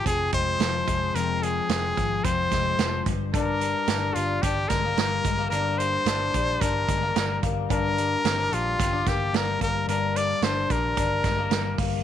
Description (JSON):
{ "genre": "jangly indie pop", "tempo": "110 BPM", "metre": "4/4", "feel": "straight", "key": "unclear", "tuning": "A4 = 441 Hz", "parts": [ { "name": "brilliant trumpet", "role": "melody", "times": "0.0-11.8 s", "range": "F4 to D5", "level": "-26 LUFS", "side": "left 1 dB", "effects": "none" }, { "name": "electric guitar through a small old amp", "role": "arpeggios", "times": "0.0-12.0 s", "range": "F2 to D4", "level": "-30 LUFS", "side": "left 9 dB", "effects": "wide subtle chorus, tape echo" }, { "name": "vintage muted picked electric bass", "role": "bass", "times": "0.1-12.0 s", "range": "F1 to Bb1", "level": "-30 LUFS", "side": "equal", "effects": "none" }, { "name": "vintage drum kit", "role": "drums", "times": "0.1-11.9 s", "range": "hi-hat, kick drum, snare drum", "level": "-28 LUFS", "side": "right 5 dB", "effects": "none" } ], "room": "light reverb, small room ambience", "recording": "1960s-style stereo", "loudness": "-22 LUFS", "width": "side -10 dB against mid", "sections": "0.0-12.0 A section", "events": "none", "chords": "0.0 Fm; 3.1 Gm" }